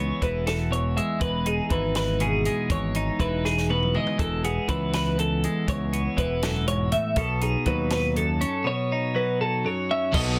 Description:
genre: math rock and midwest emo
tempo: 81 BPM (dotted quarters)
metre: 6/8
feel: straight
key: unclear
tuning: A4 = 440 Hz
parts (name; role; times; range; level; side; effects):
- twelve-string electric guitar; accompaniment; 0.0-10.4 s; E2 to D#4; -30 LUFS; equal; none
- twelve-string electric guitar; arpeggios; 0.0-10.4 s; G#4 to E5; -30 LUFS; equal; lush chorus
- modern bright fingered electric bass; bass; 0.0-10.4 s; E1 to D#2; -30 LUFS; equal; none
- compact cocktail drum kit; drums; 0.2-10.3 s; crash cymbal, hi-hat, kick drum, snare drum, toms; -32 LUFS; equal; soft clipping on snare
- overdriven semi-hollow guitar; riff; 10.1-10.4 s; F#3 to A4; -31 LUFS; equal; none
room: moderate studio reverb, RT60 0.6 s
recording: dense, heavily limited modern master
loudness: -25 LUFS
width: mono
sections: 0.0-10.1 A section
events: drum fill 3.5-4.2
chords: 0.0 Amaj9/E; 1.2 Emaj7; 4.2 Amaj9/E; 7.2 B9

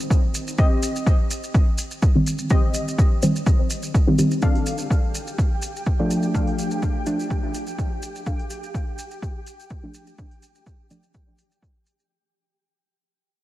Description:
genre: dub techno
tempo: 125 BPM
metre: 4/4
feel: swing 54% on 16ths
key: D phrygian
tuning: A4 = 442 Hz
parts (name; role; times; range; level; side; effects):
- maracas; percussion; 0.0-12.1 s; none; -35 LUFS; right 2 dB; none
- electronic kick drum; drums; 0.1-11.7 s; none; -20 LUFS; equal; overdrive
- electronic hi-hat; drums; 0.3-12.0 s; none; -38 LUFS; left 3 dB; overdrive
- warbly dusty pluck; riff; 0.6-8.4 s; C4 to F5; -32 LUFS; left 2 dB; chorus, cassette tape, sidechain pumping, dub echo
- deep mellow chord stab; stabs; 2.2-11.0 s; Eb3 to D4; -24 LUFS; equal; chorus, phaser, sidechain pumping, dub echo
- flickering grainy texture; texture; 4.9-12.1 s; G4 to G5; -36 LUFS; right 1 dB; built-in reverb, analog chorus, sidechain pumping
room: light reverb, digital ambience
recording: vinyl crackle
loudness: -19 LUFS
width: side -15 dB against mid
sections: 0.0-4.4 A section; 4.4-12.1 B section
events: filter sweep on synth stab 0.0-4.4, 4.4-12.1; fade-out 4.4-12.1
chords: 0.0 Cm; 4.4 Dm

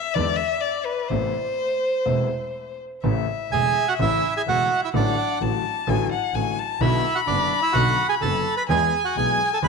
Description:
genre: tango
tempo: 127 BPM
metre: 4/4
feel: rubato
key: A minor, A major from 3.0 s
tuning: A4 = 439 Hz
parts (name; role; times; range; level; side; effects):
- rich violin; second line; 0.0-9.7 s; B4 to B5; -25 LUFS; left 6 dB; none
- warm grand piano; accompaniment; 0.2-9.7 s; E1 to G#4; -28 LUFS; left 11 dB; none
- clear double bass; bass; 0.2-9.7 s; E1 to E2; -26 LUFS; right 5 dB; none
- bandoneon; melody; 3.5-9.7 s; D4 to B5; -22 LUFS; right 8 dB; slapback echo
room: wet spring reverb, RT60 2.5 s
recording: 1960s-style stereo with parts hard left and right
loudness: -20 LUFS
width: side -4 dB against mid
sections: 0.0-3.0 A section; 3.0-9.7 B section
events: violin solo 0.0-3.0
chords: 0.2 E7; 1.1 Amadd9; 3.0 A; 4.9 D/A; 6.8 Bm; 8.7 E

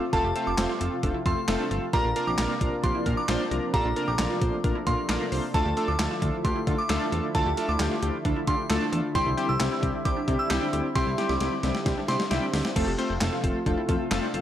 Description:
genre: synth-pop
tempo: 133 BPM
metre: 4/4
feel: straight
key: F major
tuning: A4 = 444 Hz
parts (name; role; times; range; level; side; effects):
- warm analog keys; accompaniment; 0.0-14.4 s; G3 to C5; -30 LUFS; left 1 dB; chorus
- lush unison pad; sustained chords; 0.0-14.4 s; C3 to F4; -32 LUFS; equal; chorus, tremolo
- glassy synth bell; second line; 0.1-12.2 s; A5 to E6; -31 LUFS; equal; chorus, tape echo
- wide unison pluck; arpeggios; 0.1-14.3 s; C4 to A4; -36 LUFS; right 2 dB; lush chorus, tape echo
- fat analog bass; bass; 0.1-14.4 s; F1 to D3; -30 LUFS; equal; none
- gated 80s digital drum machine; drums; 0.1-14.4 s; crash cymbal, handclaps, hi-hat, kick drum, snare drum; -29 LUFS; equal; gated reverb, gated reverb snare, overdrive
room: little or no reverb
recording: dry, gritty hardware recording, transformer saturation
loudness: -23 LUFS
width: side -11 dB against mid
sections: 0.0-12.8 A section; 12.8-14.4 A section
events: drum fill 11.0-12.8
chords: 0.0 F; 1.9 Bbadd9; 5.5 Dmadd9; 9.2 Cadd9; 12.8 F

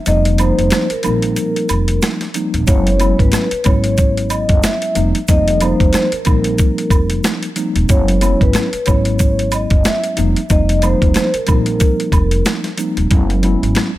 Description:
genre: hip hop, boom-bap hip-hop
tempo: 92 BPM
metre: 4/4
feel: swing 56% on 16ths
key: unclear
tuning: A4 = 436 Hz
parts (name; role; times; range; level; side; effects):
- vibraphone with soft mallets; melody; 0.1-12.4 s; Bb4 to Fb5; -20 LUFS; equal; high-pass filter, low-pass filter
- mellow tine electric piano; accompaniment; 0.1-13.9 s; F3 to Fb4; -19 LUFS; left 1 dB; medium stereo tremolo, cassette tape, high-pass filter, low-pass filter
- upright bass; bass; 0.1-14.0 s; Eb1 to Bb1; -17 LUFS; equal; none
- boom bap sampler-style drum kit; drums; 0.1-13.9 s; hi-hat, kick drum, rim click, snare drum; -16 LUFS; equal; none
- tube shaker and woodblock; percussion; 0.1-13.0 s; none; -26 LUFS; right 6 dB; none
room: little or no reverb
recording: none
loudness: -12 LUFS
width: side -15 dB against mid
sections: 0.0-13.1 A section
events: break 0.1-2.7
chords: 0.0 F9sus4; 2.7 Gb9sus4; 5.0 F9sus4; 7.9 Gb9sus4; 10.2 F9sus4; 13.1 Gb9sus4

